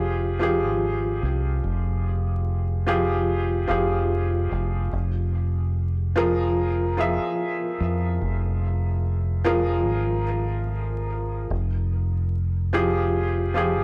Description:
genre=trip hop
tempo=73 BPM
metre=4/4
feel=swing 58% on 16ths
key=F harmonic minor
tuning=A4 = 440 Hz
part: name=felt-muted upright piano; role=accompaniment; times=0.0-13.8 s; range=F3 to E5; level=-27 LUFS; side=equal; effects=harmonic tremolo, tape echo
part: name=deep dub fingered electric bass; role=bass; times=0.0-13.8 s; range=F1 to F2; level=-27 LUFS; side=equal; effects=tube saturation
room=small room reverb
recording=dry, gritty hardware recording, vinyl crackle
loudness=-24 LUFS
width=mono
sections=0.0-13.8 A section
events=none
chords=0.0 Fmadd9; 4.9 Fmmaj7; 11.5 Fmadd9

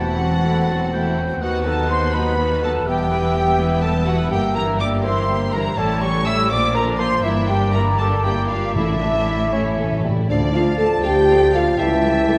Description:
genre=quick classical-period movement for symphony orchestra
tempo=82 BPM (dotted quarters)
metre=6/8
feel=rubato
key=E minor, D minor from 4.3 s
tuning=A4 = 439 Hz
part: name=warm studio violin section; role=melody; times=0.0-12.4 s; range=E5 to E6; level=-32 LUFS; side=equal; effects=none
part: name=clear clarinet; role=second line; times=0.0-12.4 s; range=E4 to G5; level=-30 LUFS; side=equal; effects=none
part: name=flute section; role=second line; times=0.0-12.4 s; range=D5 to E6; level=-27 LUFS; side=equal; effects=none
part: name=rich studio violin section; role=second line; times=0.0-12.4 s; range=B3 to A5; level=-33 LUFS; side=equal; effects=none
part: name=warm oboe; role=second line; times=0.0-12.4 s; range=C#5 to A5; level=-30 LUFS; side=equal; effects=none
part: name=mellow bassoon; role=accompaniment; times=0.0-12.4 s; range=E3 to C#4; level=-29 LUFS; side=equal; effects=none
part: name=warm studio viola section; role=accompaniment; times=0.0-12.4 s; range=D3 to A4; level=-30 LUFS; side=equal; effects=none
part: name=clear studio cello section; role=bass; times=0.0-12.4 s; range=C#2 to Bb2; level=-27 LUFS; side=equal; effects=none
part: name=warm studio double bass section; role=bass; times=0.0-12.4 s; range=E1 to D#2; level=-27 LUFS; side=equal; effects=none
part: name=timpani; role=percussion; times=8.8-10.2 s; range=A2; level=-28 LUFS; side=equal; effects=none
part: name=dark French horn section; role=sustained chords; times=10.3-12.4 s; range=D4 to A4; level=-19 LUFS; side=equal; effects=none
room=wet scoring stage reverb, RT60 1.7 s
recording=none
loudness=-19 LUFS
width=mono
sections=0.0-10.3 A section; 10.3-12.4 B section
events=timpani fill 9.5-10.3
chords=0.0 F#m7b5/E; 1.4 B/D#; 2.9 Em; 4.3 Edim/G; 5.8 A7; 6.5 Bb; 7.2 Em7b5/G; 8.8 Asus4; 9.5 A; 10.3 Dm; 11.8 A7/C#

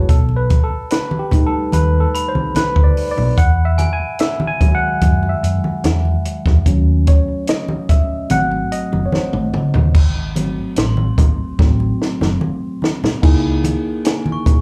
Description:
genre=lush 1970s-style soul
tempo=73 BPM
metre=4/4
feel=straight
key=unclear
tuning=A4 = 440 Hz
part: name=mellow tine electric piano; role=accompaniment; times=0.0-14.6 s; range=D#3 to G#5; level=-23 LUFS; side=equal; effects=overdrive, phaser, slapback echo
part: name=hollow-body short-scale fingered electric bass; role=bass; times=0.0-13.7 s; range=F#1 to F#2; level=-19 LUFS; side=equal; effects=none
part: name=compact cocktail drum kit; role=drums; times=0.1-14.6 s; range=crash cymbal, hi-hat, kick drum, snare drum, toms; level=-18 LUFS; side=equal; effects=none
part: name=congas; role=percussion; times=0.3-14.6 s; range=none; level=-25 LUFS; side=equal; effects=none
part: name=glockenspiel with hard plastic mallets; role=texture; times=2.1-5.5, 10.8-14.6 s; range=G#5 to C#6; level=-33 LUFS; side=equal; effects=none
room=little or no reverb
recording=live gig heard through the venue's PA, club reverb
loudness=-16 LUFS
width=mono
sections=0.0-9.9 A section; 9.9-13.2 B section; 13.2-14.6 C section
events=tine electric piano solo 0.0-9.9, 9.9-13.2; drum fill 9.1-9.9, 11.6-13.2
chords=0.1 B7alt; 3.4 Emaj9; 6.7 D#m7b5; 8.3 G#7b9; 13.2 C#m69

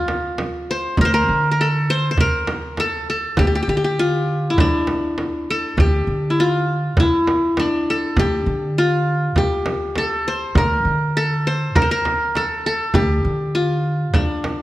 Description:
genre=Turkish makam ensemble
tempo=100 BPM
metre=4/4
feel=straight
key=D makam nihavent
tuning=A4 = 445 Hz
part: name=qanun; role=melody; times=0.0-14.6 s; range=D4 to C5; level=-19 LUFS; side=left 1 dB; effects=none
part: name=upright bass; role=bass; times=0.0-14.6 s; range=D2 to D3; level=-23 LUFS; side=equal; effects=none
part: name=frame drum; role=percussion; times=0.1-14.6 s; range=none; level=-21 LUFS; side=right 1 dB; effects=none
room=moderate recital hall reverb, RT60 1.7 s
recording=none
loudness=-17 LUFS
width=side -16 dB against mid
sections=0.0-14.6 A section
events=none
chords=none

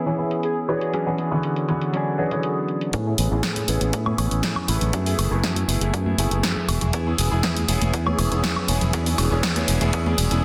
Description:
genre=filtered disco house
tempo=120 BPM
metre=4/4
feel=straight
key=A major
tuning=A4 = 440 Hz
part: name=clear baby grand piano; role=accompaniment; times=0.0-10.4 s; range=D3 to C#5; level=-28 LUFS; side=equal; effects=phaser, sidechain pumping, low-pass filter
part: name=direct-recorded clean electric guitar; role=riff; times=0.0-10.4 s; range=E3 to G#4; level=-32 LUFS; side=equal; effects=sidechain pumping, low-pass filter
part: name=punchy analog drum machine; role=drums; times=0.3-10.4 s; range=hi-hat, snare drum, woodblock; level=-28 LUFS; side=equal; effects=sidechain pumping on hats, low-pass filter on hats, low-pass filter on snare, sidechain pumping on perc, low-pass filter on perc
part: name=analog synth brass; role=melody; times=0.4-1.0 s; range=G#4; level=-33 LUFS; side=equal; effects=chorus, sidechain pumping, low-pass filter, dub echo
part: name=modern bright fingered electric bass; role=bass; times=2.9-10.4 s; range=E1 to A2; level=-25 LUFS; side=equal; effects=sidechain pumping, low-pass filter
part: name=electronic kick drum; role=drums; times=2.9-10.0 s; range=none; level=-34 LUFS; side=equal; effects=high-pass filter on kick
part: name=tambourine and congas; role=percussion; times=2.9-10.4 s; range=none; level=-34 LUFS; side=equal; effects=sidechain pumping on perc, low-pass filter on perc
room=moderate plate reverb, RT60 1.9 s, digital ambience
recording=dense, heavily limited modern master, faint mains hum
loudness=-22 LUFS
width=mono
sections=0.0-2.9 A section; 2.9-10.4 B section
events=build-up 2.9-10.4; filter sweep 2.9-10.4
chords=0.0 C#m7/E; 0.9 E13; 2.9 Amaj9; 4.9 F#m11; 6.7 C#m7/E; 8.9 E13

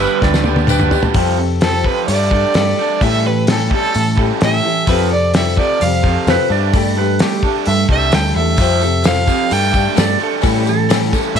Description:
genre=folk rock and heartland rock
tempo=129 BPM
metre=4/4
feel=straight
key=unclear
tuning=A4 = 442 Hz
part: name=clear fiddle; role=melody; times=0.0-11.4 s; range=A4 to G5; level=-18 LUFS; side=right 3 dB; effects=none
part: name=clean lap steel guitar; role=second line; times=0.0-1.0, 6.3-11.2 s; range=G4 to D5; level=-21 LUFS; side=right 13 dB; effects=slapback echo
part: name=picked steel-string acoustic guitar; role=accompaniment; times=0.0-11.4 s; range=A2 to B4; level=-20 LUFS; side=left 14 dB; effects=none
part: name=raw garage guitar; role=riff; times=0.0-11.4 s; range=F2 to G4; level=-21 LUFS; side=right 15 dB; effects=overdrive
part: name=deep dub picked electric bass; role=bass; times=0.0-11.4 s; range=C2 to A2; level=-18 LUFS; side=equal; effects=none
part: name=tambourine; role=percussion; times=0.1-1.0, 8.6-11.2 s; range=none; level=-31 LUFS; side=left 18 dB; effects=none
part: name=cloth-damped thuddy drum kit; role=drums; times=0.2-11.4 s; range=hi-hat, kick drum, snare drum, toms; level=-18 LUFS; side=equal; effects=none
room=light reverb, small room ambience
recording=1960s-style stereo with parts hard left and right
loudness=-12 LUFS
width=side -7 dB against mid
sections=0.0-1.2 A section; 1.2-11.4 B section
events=drum fill 0.2-1.2; fiddle solo 1.2-11.4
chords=0.0 G; 1.2 Fadd9; 2.1 Gsus2; 3.0 A7; 4.9 Fadd9; 6.5 Gsus2; 8.6 Fadd9; 9.5 Gsus2; 10.4 A7

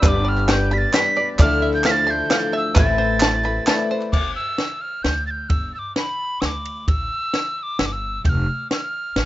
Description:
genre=indie folk with a building arrangement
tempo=131 BPM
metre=3/4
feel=straight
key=unclear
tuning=A4 = 440 Hz
part: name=wooden whistle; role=melody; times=0.0-9.3 s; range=B5 to B6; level=-23 LUFS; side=right 1 dB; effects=plate reverb, digital delay
part: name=dark upright piano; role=accompaniment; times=0.0-4.2 s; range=G1 to F5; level=-28 LUFS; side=equal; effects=plate reverb
part: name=picked twelve-string acoustic guitar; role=accompaniment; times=0.0-4.2 s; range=A2 to B4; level=-24 LUFS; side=left 5 dB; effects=plate reverb
part: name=bluegrass banjo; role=arpeggios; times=0.0-4.1 s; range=B4 to C6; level=-27 LUFS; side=right 3 dB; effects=plate reverb, digital delay
part: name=upright bass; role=bass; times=0.0-9.3 s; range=F1 to D2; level=-24 LUFS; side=equal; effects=none
part: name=compact cocktail drum kit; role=drums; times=0.0-9.3 s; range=crash cymbal, hi-hat, kick drum, ride cymbal, snare drum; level=-19 LUFS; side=equal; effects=none
part: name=group handclap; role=percussion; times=0.0-4.1 s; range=none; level=-28 LUFS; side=right 2 dB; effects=none
room=light reverb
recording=rough home demo mix, nothing above 7.7 kHz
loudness=-18 LUFS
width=side -15 dB against mid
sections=0.0-4.1 A section; 4.1-9.3 B section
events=none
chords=0.0 G; 1.4 Dmadd9; 2.8 Amadd9; 4.1 G5; 6.9 A5; 8.2 F

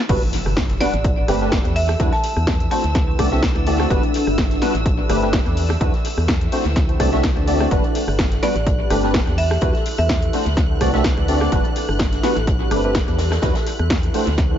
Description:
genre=piano house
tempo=126 BPM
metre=4/4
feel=swing 54% on 16ths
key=E minor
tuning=A4 = 437 Hz
part: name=clear studio violin section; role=sustained chords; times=0.0-14.6 s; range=E6 to A6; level=-34 LUFS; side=right 1 dB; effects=sidechain pumping
part: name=percussive organ stab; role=riff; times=0.1-14.3 s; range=G3 to E5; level=-23 LUFS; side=equal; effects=ensemble chorus, sidechain pumping, tape echo
part: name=organ-like FM bass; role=bass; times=0.1-14.6 s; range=G1 to E2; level=-22 LUFS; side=equal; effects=sidechain pumping
part: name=electronic kick drum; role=drums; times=0.1-14.5 s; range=none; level=-21 LUFS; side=equal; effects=none
part: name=punchy analog drum machine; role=drums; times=0.1-14.5 s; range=crash cymbal, hi-hat, rim click, snare drum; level=-25 LUFS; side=equal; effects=tape echo
part: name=tight funk drum kit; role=drums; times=0.1-14.5 s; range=hi-hat, snare drum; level=-34 LUFS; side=left 2 dB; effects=none
part: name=impact and swell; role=sound effects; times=0.1-2.0, 14.6 s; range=none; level=-29 LUFS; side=equal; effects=none
part: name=granular cloud pad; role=texture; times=0.8-14.6 s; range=D4 to F#5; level=-28 LUFS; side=equal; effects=built-in reverb, sidechain pumping
part: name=marimba with hard mallets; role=melody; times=0.8-3.1, 8.4-10.4 s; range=D5 to A5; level=-26 LUFS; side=right 2 dB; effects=tape echo
room=light reverb, small room ambience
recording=echo-heavy mix, nothing above 7.6 kHz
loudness=-16 LUFS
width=side -10 dB against mid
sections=0.1-14.6 A section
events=drop 0.1-14.6; impact 0.1-2.0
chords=0.1 Gmaj7; 1.0 Am11; 1.8 Em9; 2.7 D7; 3.9 Gmaj7; 4.9 Am11; 5.6 Em9; 6.5 D7; 7.7 Gmaj7; 8.7 Am11; 9.4 Em9; 10.3 D7; 11.5 Gmaj7; 12.5 Am11; 13.2 Em9

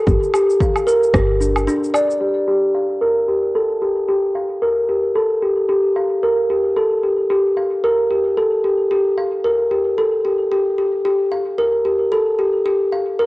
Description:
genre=organic downtempo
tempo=112 BPM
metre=4/4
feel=swing 57% on 16ths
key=unclear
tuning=A4 = 440 Hz
part: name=kalimba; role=arpeggios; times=0.1-13.3 s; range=D4 to F5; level=-15 LUFS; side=equal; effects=low-pass filter, cassette tape, analog delay
part: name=woody FM bass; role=bass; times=0.1-1.7 s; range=G1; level=-19 LUFS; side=equal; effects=none
part: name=electronic kick drum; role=drums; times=0.1-1.3 s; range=none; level=-19 LUFS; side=equal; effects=cassette tape
part: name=electronic shaker, woodblock and rim click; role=drums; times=0.1-2.2 s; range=none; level=-24 LUFS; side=right 1 dB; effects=overdrive, low-pass filter on perc, cassette tape, low-pass filter on snare
room=light reverb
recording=home recording on cassette, nothing above 10.5 kHz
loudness=-15 LUFS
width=side -20 dB against mid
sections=0.0-2.2 A section; 2.2-13.3 B section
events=filter sweep on kalimba 2.2-13.3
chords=0.0 Fsus2 (rootless); 2.2 N.C.

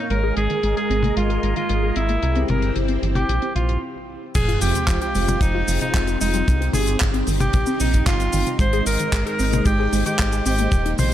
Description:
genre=italo disco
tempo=113 BPM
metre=4/4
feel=straight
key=F minor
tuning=A4 = 440 Hz
part: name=bright alto saxophone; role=melody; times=0.0-11.1 s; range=Eb4 to C5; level=-25 LUFS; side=equal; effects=tape echo
part: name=string machine, full ensemble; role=sustained chords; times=0.0-11.1 s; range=Ab3 to Eb5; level=-26 LUFS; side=equal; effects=phaser, ensemble chorus
part: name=warbly dusty pluck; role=arpeggios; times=0.0-11.1 s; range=G2 to Ab4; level=-28 LUFS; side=left 2 dB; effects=chorus, tape echo
part: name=round analog bass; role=bass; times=0.1-11.1 s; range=Eb1 to C2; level=-22 LUFS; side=equal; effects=none
part: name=damped 70s drum kit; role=drums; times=0.1-11.1 s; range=cabasa, crash cymbal, handclaps, hi-hat, toms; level=-27 LUFS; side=left 1 dB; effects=low-pass filter on hats, low-pass filter on toms, low-pass filter on cymbals, low-pass filter on snare, low-pass filter on perc, low-pass filter on room, gated reverb
part: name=kick drum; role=drums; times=4.4-10.8 s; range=none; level=-20 LUFS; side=equal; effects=none
part: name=sub drop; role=sound effects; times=4.4-6.5 s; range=none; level=-29 LUFS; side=equal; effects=none
room=light reverb, small room ambience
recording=none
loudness=-18 LUFS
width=side -11 dB against mid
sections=0.0-4.4 A section; 4.4-11.1 B section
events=stop 3.8-4.4; impact 4.4-6.5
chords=0.1 Absus2; 2.2 C; 4.4 Fm; 6.5 Cm; 8.6 Ab

